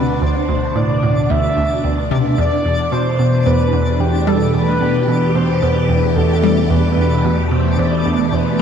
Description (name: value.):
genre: ambient.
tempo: 111 BPM.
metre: 4/4.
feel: straight.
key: E minor.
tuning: A4 = 439 Hz.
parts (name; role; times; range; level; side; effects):
mellow horn-like synth lead; melody; 0.0-8.6 s; G4 to E5; -20 LUFS; left 1 dB; chorus, analog delay.
phased string machine; sustained chords; 0.0-8.6 s; B2 to G4; -19 LUFS; equal; ensemble chorus, phaser.
hollow square pluck; riff; 0.0-8.6 s; D2 to G3; -19 LUFS; right 2 dB; chorus, phaser, analog delay.
fat analog bass; bass; 0.0-8.6 s; D2 to E2; -20 LUFS; equal; none.
twinkling granular texture; texture; 0.0-8.6 s; D4 to D5; -26 LUFS; equal; built-in reverb.
room: wet spring reverb, RT60 2.5 s.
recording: echo-heavy mix.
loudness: -13 LUFS.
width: side -7 dB against mid.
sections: 0.0-8.6 A section.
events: none.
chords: 0.0 Dadd9; 2.4 Em.